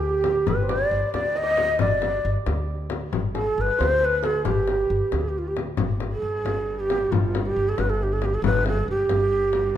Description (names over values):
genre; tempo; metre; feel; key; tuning
Persian modal ensemble; 90 BPM (dotted quarters); 6/8; straight; G dastgah homayun; A4 = 440 Hz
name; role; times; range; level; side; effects
breathy mellow ney; melody; 0.0-9.8 s; F4 to Eb5; -23 LUFS; right 1 dB; none
santur; second line; 0.0-7.6 s; G4 to Eb5; -32 LUFS; right 6 dB; none
upright bass; bass; 0.0-9.7 s; G1 to D2; -27 LUFS; equal; none
frame drum; percussion; 0.2-9.6 s; none; -28 LUFS; left 6 dB; none
warm cello; drone; 5.8-9.8 s; G2; -33 LUFS; right 1 dB; none
room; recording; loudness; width
moderate recital hall reverb, RT60 1.5 s; minimal, uncompressed stereo recording; -21 LUFS; side -10 dB against mid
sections
0.0-5.8 A section; 5.8-9.8 B section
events
none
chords
none